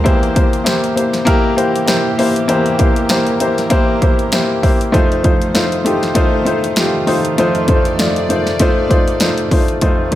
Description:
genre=piano-driven pop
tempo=98 BPM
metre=4/4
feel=swing 56% on 16ths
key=unclear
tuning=A4 = 441 Hz
part: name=warm upright piano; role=accompaniment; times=0.0-10.2 s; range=F1 to D5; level=-14 LUFS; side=left 1 dB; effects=none
part: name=dark studio string section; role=sustained chords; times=0.0-10.2 s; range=Eb3 to D5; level=-25 LUFS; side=right 4 dB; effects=none
part: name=house drum kit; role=drums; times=0.1-10.2 s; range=hi-hat, kick drum, snare drum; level=-16 LUFS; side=equal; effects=none
room=light reverb, small room ambience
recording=none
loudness=-12 LUFS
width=side -13 dB against mid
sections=0.0-9.8 A section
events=none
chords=0.1 C7/E; 4.9 F7

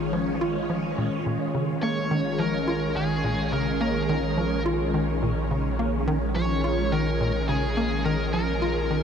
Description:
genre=ambient, sequencer-driven space music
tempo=106 BPM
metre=4/4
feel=straight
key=Bb minor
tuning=A4 = 440 Hz
part: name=phased string machine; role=sustained chords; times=0.0-9.0 s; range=Eb3 to F4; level=-27 LUFS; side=equal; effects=ensemble chorus, phaser
part: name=round analog bass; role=bass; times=0.0-9.0 s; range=Bb1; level=-31 LUFS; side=equal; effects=none
part: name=tight sequencer bass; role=riff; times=0.1-9.0 s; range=Bb2 to F4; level=-28 LUFS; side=equal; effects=analog chorus, analog delay
part: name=high-gain lead guitar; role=melody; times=1.8-9.0 s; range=Ab4 to Db5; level=-30 LUFS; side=equal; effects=distortion, analog delay
room=wet huge ambient reverb, RT60 8.2 s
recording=dark, warm production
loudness=-23 LUFS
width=side -7 dB against mid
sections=0.0-9.0 A section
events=none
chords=0.0 Bbm

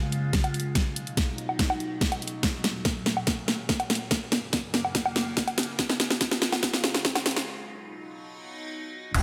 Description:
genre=heavy wobble dubstep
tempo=143 BPM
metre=4/4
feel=half-time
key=unclear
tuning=A4 = 441 Hz
part: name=evolving wavetable pad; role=sustained chords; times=0.0-9.2 s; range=Eb2 to Gb4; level=-37 LUFS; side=equal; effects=phaser, built-in reverb, sidechain pumping
part: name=dubstep drum kit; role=drums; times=0.1-9.2 s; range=crash cymbal, hi-hat, snare drum, woodblock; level=-28 LUFS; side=equal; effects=studio reverb
part: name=electronic kick drum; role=drums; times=0.3-9.2 s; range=none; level=-32 LUFS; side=equal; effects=studio reverb
part: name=metallic wobble bass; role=bass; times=9.1-9.2 s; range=Eb1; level=-27 LUFS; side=equal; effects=chorus, overdrive
room=light reverb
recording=high-pass filter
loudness=-27 LUFS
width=mono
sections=0.0-9.1 A section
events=build-up 0.0-9.1; drum fill 0.0-7.5; filter sweep 0.0-9.1; break 7.5-9.1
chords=0.0 Db; 0.8 B; 2.4 Ebm; 4.1 Gb; 5.8 Db; 7.5 B

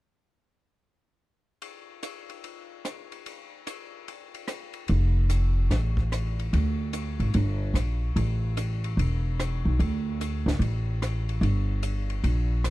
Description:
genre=jazz, small-group swing and bop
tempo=147 BPM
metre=4/4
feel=swing 65% on 8ths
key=F major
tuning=A4 = 441 Hz
part: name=compact cocktail drum kit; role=drums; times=1.6-12.7 s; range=hi-hat, kick drum, ride cymbal, rim click, snare drum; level=-36 LUFS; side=left 1 dB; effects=none
part: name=upright bass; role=bass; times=4.9-12.7 s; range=E1 to D2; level=-24 LUFS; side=equal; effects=none
room=little or no reverb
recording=dry, close 1970s-style studio recording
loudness=-24 LUFS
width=side -18 dB against mid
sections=1.6-4.9 A section; 4.9-12.7 B section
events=none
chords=none

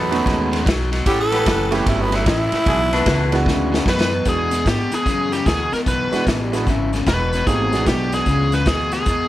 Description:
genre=electric blues shuffle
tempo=150 BPM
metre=4/4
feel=swing 64% on 8ths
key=E mixolydian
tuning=A4 = 443 Hz
part: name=growling tenor saxophone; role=second line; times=0.0-3.4, 6.3-6.9 s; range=E3 to A4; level=-22 LUFS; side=right 3 dB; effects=analog delay
part: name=overdriven electric guitar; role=riff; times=0.0-9.3 s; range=E2 to G#3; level=-24 LUFS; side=left 4 dB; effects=none
part: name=clear horn section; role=stabs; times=0.0-3.4 s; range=B3 to B4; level=-24 LUFS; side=left 2 dB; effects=none
part: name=upright bass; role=bass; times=0.0-9.3 s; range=E1 to G#2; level=-23 LUFS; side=equal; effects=none
part: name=warm upright piano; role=accompaniment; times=0.1-8.6 s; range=G#3 to G4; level=-24 LUFS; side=right 5 dB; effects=none
part: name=vintage drum kit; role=drums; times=0.1-9.2 s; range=hi-hat, kick drum, ride cymbal, snare drum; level=-22 LUFS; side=equal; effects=none
part: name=biting lead guitar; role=melody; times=3.9-9.3 s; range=G4 to B4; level=-21 LUFS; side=equal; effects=overdrive
room=light reverb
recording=none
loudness=-16 LUFS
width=side -14 dB against mid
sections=0.0-4.3 A section; 4.3-9.3 B section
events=tenor saxophone solo 0.0-4.3; drum fill 3.5-4.3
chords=0.0 B9; 1.1 A9; 2.7 E9

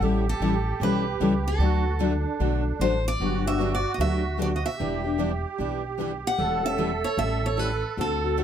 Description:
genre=acoustic string swing (jazz manouche)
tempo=151 BPM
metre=4/4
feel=swing 64% on 8ths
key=G major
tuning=A4 = 441 Hz
part: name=musette accordion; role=second line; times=0.0-8.4 s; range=D4 to A4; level=-31 LUFS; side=right 8 dB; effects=none
part: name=picked steel-string acoustic guitar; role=accompaniment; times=0.0-8.4 s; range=D3 to A4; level=-28 LUFS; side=left 6 dB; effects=none
part: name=picked steel-string acoustic guitar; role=accompaniment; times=0.0-8.4 s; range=D3 to B4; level=-33 LUFS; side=right 7 dB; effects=none
part: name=upright bass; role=bass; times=0.0-8.4 s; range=E1 to D2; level=-28 LUFS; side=equal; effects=none
part: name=picked steel-string acoustic guitar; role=melody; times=0.3-8.4 s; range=A4 to F#5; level=-29 LUFS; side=equal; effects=none
room=light reverb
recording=none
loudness=-23 LUFS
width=side -9 dB against mid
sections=0.0-3.2 A section; 3.2-8.4 B section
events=none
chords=0.0 A7; 1.6 D; 3.2 Gmaj7; 4.8 Em7; 6.4 A7/E

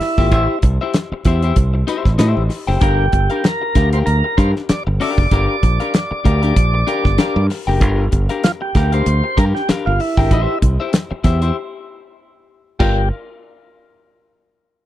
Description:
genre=funk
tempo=96 BPM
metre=4/4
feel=swing 56% on 16ths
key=G dorian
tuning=A4 = 440 Hz
part: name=tonewheel organ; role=melody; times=0.0-13.1 s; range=E4 to D5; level=-20 LUFS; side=right 2 dB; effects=slow rotary speaker
part: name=electric guitar at the edge of break-up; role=accompaniment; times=0.0-13.0 s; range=Bb3 to G5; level=-22 LUFS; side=left 6 dB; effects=spring reverb
part: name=damped 70s drum kit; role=drums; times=0.0-13.0 s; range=crash cymbal, hi-hat, kick drum, snare drum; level=-16 LUFS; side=equal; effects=none
part: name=modern bright fingered electric bass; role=bass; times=0.2-13.1 s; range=F#1 to A2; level=-16 LUFS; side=equal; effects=none
room=little or no reverb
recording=dry, close 1970s-style studio recording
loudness=-14 LUFS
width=side -13 dB against mid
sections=0.0-12.8 A section; 12.8-14.9 B section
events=break 11.6-12.8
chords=0.3 Am7; 2.8 Gm7; 10.3 Am7 (rootless); 12.8 Gm7

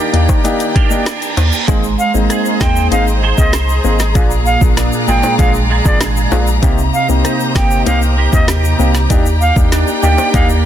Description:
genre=dancehall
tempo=97 BPM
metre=4/4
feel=straight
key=Eb major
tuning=A4 = 445 Hz
part: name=warm baby grand piano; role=accompaniment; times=0.0-10.5 s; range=Bb3 to Ab4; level=-19 LUFS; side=left 4 dB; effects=none
part: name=clear studio string section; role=sustained chords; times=0.0-10.7 s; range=G4 to Bb5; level=-22 LUFS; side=left 2 dB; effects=sidechain pumping
part: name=clean electric guitar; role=arpeggios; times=0.0-10.6 s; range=Bb2 to C5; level=-20 LUFS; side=right 8 dB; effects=ensemble chorus
part: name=punchy sub bass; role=bass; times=0.1-10.7 s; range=G1 to Eb2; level=-15 LUFS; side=equal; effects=none
part: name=afro-pop drum kit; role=drums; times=0.1-10.5 s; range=hi-hat, kick drum, rim click, snare drum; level=-15 LUFS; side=equal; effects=soft clipping on snare
part: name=timbales and egg shaker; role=percussion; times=0.3-10.6 s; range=none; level=-26 LUFS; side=left 6 dB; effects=none
part: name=reverse cymbal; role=sound effects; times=0.9-1.7 s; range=none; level=-24 LUFS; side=right 5 dB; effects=none
part: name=bright reedy silver concert flute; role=melody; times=2.0-10.5 s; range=D5 to G5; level=-19 LUFS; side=right 2 dB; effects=ping-pong delay
room=studio ambience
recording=dense, heavily limited modern master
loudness=-10 LUFS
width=side -10 dB against mid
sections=0.0-1.7 A section; 1.7-10.7 B section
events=reverse cymbal 0.9-1.7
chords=0.0 Ebmaj7; 1.7 Abadd9; 4.2 Bb7; 6.6 Cm7; 9.1 Ebmaj7

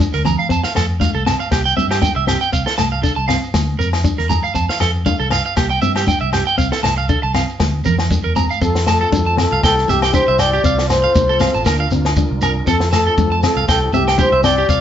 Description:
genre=highlife guitar band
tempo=118 BPM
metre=4/4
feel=swing 54% on 16ths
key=F major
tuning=A4 = 439 Hz
part: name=nylon-string guitar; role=accompaniment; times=0.0-14.8 s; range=A3 to D4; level=-24 LUFS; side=left 5 dB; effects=none
part: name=fingered electric bass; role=bass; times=0.0-14.8 s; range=A1 to G2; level=-20 LUFS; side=equal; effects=none
part: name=congas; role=percussion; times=0.0-14.8 s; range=none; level=-24 LUFS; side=right 1 dB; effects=none
part: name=shekere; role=percussion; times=0.0-14.8 s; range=none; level=-27 LUFS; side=right 1 dB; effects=none
part: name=electric guitar at the edge of break-up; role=arpeggios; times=0.1-14.8 s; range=G4 to Bb5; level=-19 LUFS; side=right 5 dB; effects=none
part: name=compact cocktail drum kit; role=drums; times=0.1-14.8 s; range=kick drum, snare drum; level=-21 LUFS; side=equal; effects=none
part: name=agogo bells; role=percussion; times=0.3-14.6 s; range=none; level=-26 LUFS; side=left 5 dB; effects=none
part: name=trumpet with bucket mute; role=melody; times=8.6-14.8 s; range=G4 to D5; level=-17 LUFS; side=left 2 dB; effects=none
part: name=tonewheel organ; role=sustained chords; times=8.6-14.8 s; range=C4 to Bb4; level=-29 LUFS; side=right 2 dB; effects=slow rotary speaker, chorus vibrato
room=wet studio reverb, RT60 0.8 s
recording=band playing live in one room, nothing above 7.6 kHz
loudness=-14 LUFS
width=side -10 dB against mid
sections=0.0-8.6 A section; 8.6-14.8 B section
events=none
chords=0.0 Bb/D; 0.5 F; 1.5 C; 2.5 F/C; 3.5 Bb/D; 4.6 F; 5.6 C; 6.6 F/C; 7.6 Bb/D; 8.6 F; 9.6 C; 10.6 F/C; 11.7 Bb/D; 12.7 F; 13.7 C

